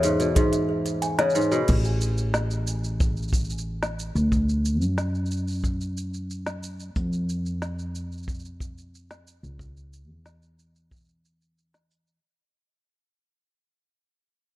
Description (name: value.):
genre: folktronica.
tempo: 91 BPM.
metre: 4/4.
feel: straight.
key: unclear.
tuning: A4 = 440 Hz.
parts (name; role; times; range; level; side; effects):
kalimba; second line; 0.0-1.5 s; G#4 to G#5; -32 LUFS; right 2 dB; digital delay.
kora; arpeggios; 0.0-1.7 s; G#2 to C#3; -24 LUFS; left 1 dB; tape echo.
upright bass; bass; 0.0-12.2 s; A1 to F#2; -27 LUFS; equal; none.
organic electronic drum kit; drums; 0.0-12.2 s; crash cymbal, hi-hat, shaker, snare drum; -31 LUFS; equal; none.
kick drum; drums; 0.4-11.0 s; none; -25 LUFS; equal; none.
room: light reverb, small room ambience.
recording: dark, warm production.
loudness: -23 LUFS.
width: side -16 dB against mid.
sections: 0.0-1.7 A section; 1.7-12.2 B section.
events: fade-out 1.7-12.2.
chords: 0.0 C#m7; 1.7 N.C.; 4.3 D; 7.0 N.C.; 9.6 C#m.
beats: 0.36 1.02 | 1.68 2.34 3.00 3.66 | 4.32 4.98 5.64 6.30 | 6.96 7.62 8.28 8.94 | 9.60 10.26 10.91 11.57.